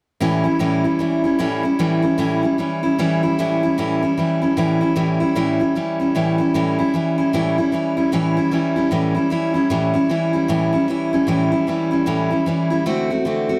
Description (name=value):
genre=rock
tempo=152 BPM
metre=4/4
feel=swing 62% on 8ths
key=A mixolydian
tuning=A4 = 440 Hz
part: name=picked steel-string acoustic guitar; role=solo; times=0.2-13.6 s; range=A2 to F#4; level=-19 LUFS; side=equal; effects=slapback echo
room=light reverb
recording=none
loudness=-19 LUFS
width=mono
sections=0.2-6.5 A section; 6.5-13.6 B section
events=none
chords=0.2 A7; 12.9 D7